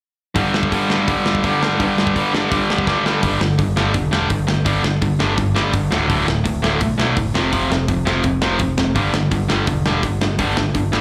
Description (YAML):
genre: punk rock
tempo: 168 BPM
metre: 4/4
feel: straight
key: unclear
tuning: A4 = 442 Hz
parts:
  - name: distorted electric guitar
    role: riff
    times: 0.3-11.0 s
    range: D2 to G3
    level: -21 LUFS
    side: equal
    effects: overdrive, slapback echo
  - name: distorted electric guitar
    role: riff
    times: 0.4-3.2 s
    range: G2 to G3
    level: -25 LUFS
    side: equal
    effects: distortion, slapback echo
  - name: tight metal drum kit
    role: drums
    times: 0.4-11.0 s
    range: hi-hat, kick drum, snare drum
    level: -24 LUFS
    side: equal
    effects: none
  - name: modern bright picked electric bass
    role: bass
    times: 3.2-11.0 s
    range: D1 to B1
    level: -25 LUFS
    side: equal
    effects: none
room: light reverb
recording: live gig heard through the venue's PA, club reverb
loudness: -18 LUFS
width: mono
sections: 0.4-3.2 A section; 3.2-11.0 B section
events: drum fill 2.9-3.2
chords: 0.4 G5; 5.9 D5; 7.3 F5; 9.0 G5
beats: | 0.35 0.71 1.07 1.43 | 1.79 2.15 2.51 2.87 | 3.23 3.58 3.94 4.30 | 4.66 5.02 5.38 5.73 | 6.09 6.45 6.81 7.17 | 7.53 7.88 8.24 8.60 | 8.96 9.31 9.67 10.03 | 10.38 10.74